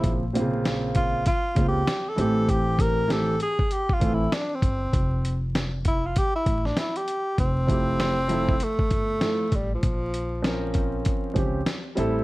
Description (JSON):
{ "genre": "hip hop, jazz-hop", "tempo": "98 BPM", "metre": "4/4", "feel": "swing 61% on 16ths", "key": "F major", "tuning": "A4 = 438 Hz", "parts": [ { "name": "breathy tenor saxophone", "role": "melody", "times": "0.0-10.9 s", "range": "F3 to Bb4", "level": "-27 LUFS", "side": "equal", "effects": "none" }, { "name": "dark baby grand piano", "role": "accompaniment", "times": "0.0-12.2 s", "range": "C3 to Bb4", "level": "-27 LUFS", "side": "right 1 dB", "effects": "none" }, { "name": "upright bass", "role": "bass", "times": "0.0-12.2 s", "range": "F1 to Db2", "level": "-28 LUFS", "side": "equal", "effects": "none" }, { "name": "dusty soul sampler-style drum kit", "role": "drums", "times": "0.0-12.1 s", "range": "hi-hat, kick drum, snare drum", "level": "-26 LUFS", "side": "equal", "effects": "none" } ], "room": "light reverb, studio ambience", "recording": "vinyl crackle", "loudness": "-22 LUFS", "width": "side -19 dB against mid", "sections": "0.0-7.4 A section; 7.4-12.2 B section", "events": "tenor saxophone solo 0.0-7.4", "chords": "0.0 Bbmadd9; 2.2 Am7; 4.9 F5; 7.4 Fmaj9; 9.8 Bbmadd9" }